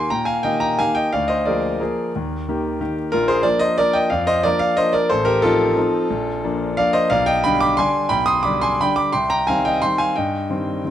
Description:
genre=classical, piano waltz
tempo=179 BPM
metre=3/4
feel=uneven beats, rubato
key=C minor from 7.1 s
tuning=A4 = 438 Hz
part: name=clear grand piano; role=solo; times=0.0-10.9 s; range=A1 to Eb6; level=-17 LUFS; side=equal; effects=none
room=moderate recital hall reverb, RT60 1.4 s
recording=close, detailed microphones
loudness=-17 LUFS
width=side -11 dB against mid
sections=0.0-10.9 A section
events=none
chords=0.0 Eb; 1.1 Bb7/D; 2.1 Eb; 3.1 Bb; 5.1 F7/A; 6.1 Bb; 7.1 G/B; 9.1 Cm

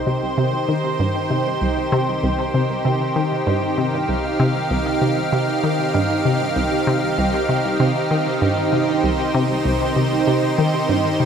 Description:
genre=ambient, sequencer-driven space music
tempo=97 BPM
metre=4/4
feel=straight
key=C minor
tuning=A4 = 440 Hz
part: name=lush unison pad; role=sustained chords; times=0.0-11.3 s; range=Eb3 to F5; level=-20 LUFS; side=right 1 dB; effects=chorus
part: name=bubbling stepped-filter texture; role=texture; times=0.0-11.3 s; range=Eb3 to Eb6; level=-39 LUFS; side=right 2 dB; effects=none
part: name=resonant blip pluck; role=riff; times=0.1-11.3 s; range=C2 to Eb3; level=-20 LUFS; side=equal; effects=chorus, tape echo
room=wet plate reverb, RT60 3.1 s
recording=echo-heavy mix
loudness=-17 LUFS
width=side -7 dB against mid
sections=0.0-11.3 A section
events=none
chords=0.0 Cm

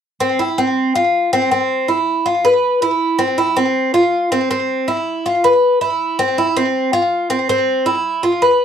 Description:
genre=latin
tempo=161 BPM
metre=4/4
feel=straight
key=C major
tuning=A4 = 440 Hz
part: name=Cuban tres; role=solo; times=0.2-8.6 s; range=C4 to B4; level=-14 LUFS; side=equal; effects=slapback echo
room=moderate booth ambience, RT60 0.2 s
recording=dry, close 1970s-style studio recording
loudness=-14 LUFS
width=side -8 dB against mid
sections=0.0-8.6 A section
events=none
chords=none

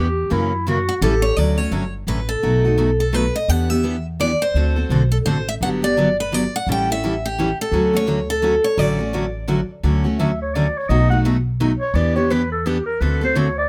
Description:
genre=acoustic string swing (jazz manouche)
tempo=170 BPM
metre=3/4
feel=swing 60% on 8ths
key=D major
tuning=A4 = 440 Hz
part: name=growling clarinet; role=second line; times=0.0-1.4, 10.2-13.7 s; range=E4 to F#5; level=-24 LUFS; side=equal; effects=slapback echo
part: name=picked steel-string acoustic guitar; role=accompaniment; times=0.0-13.5 s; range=B2 to A4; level=-23 LUFS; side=equal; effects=none
part: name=upright bass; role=bass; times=0.0-13.7 s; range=G1 to F#2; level=-24 LUFS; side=equal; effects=none
part: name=picked steel-string acoustic guitar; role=melody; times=0.9-9.7 s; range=F#4 to G5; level=-23 LUFS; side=equal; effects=none
room=little or no reverb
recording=close, detailed microphones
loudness=-19 LUFS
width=mono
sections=0.0-1.4 A section; 1.4-9.8 B section; 9.8-13.7 C section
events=clarinet solo 9.8-13.7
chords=0.3 F#7; 1.0 A7; 1.4 Dmaj7; 2.4 B7; 3.5 Em7; 4.6 D7; 5.6 Gmaj7; 6.7 A7; 7.7 Dmaj7; 10.9 B7; 12.0 Em7; 13.0 D7

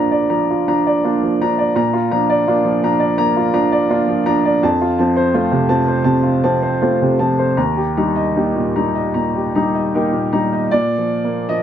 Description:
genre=neoclassical minimalist piano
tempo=75-85 BPM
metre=4/4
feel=rubato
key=Bb major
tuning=A4 = 440 Hz
part: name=clear upright piano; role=solo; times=0.0-11.6 s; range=Eb2 to Bb5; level=-14 LUFS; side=equal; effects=none
room=little or no reverb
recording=close, detailed microphones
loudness=-14 LUFS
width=side -9 dB against mid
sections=0.0-10.7 A section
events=none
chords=0.0 Bb; 4.6 F; 7.6 Eb; 10.7 Bb

